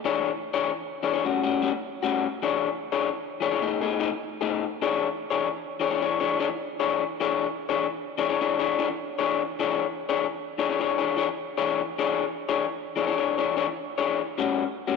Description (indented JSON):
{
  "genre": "blues",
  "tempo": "100 BPM",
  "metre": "4/4",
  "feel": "swing 64% on 8ths",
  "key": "E mixolydian",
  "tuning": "A4 = 443 Hz",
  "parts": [
    { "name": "electric guitar through a small old amp", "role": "solo", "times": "0.0-15.0 s", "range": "A2 to C#5", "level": "-24 LUFS", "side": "left 7 dB", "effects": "none" }
  ],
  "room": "wet echo chamber reverb, RT60 2.6 s",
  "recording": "none",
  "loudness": "-24 LUFS",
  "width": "side -4 dB against mid",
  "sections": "0.0-4.8 A section; 4.8-15.0 A section",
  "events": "none",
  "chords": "0.1 E6; 1.2 A6; 2.4 E6; 3.6 B6; 4.8 E6; 14.4 A6"
}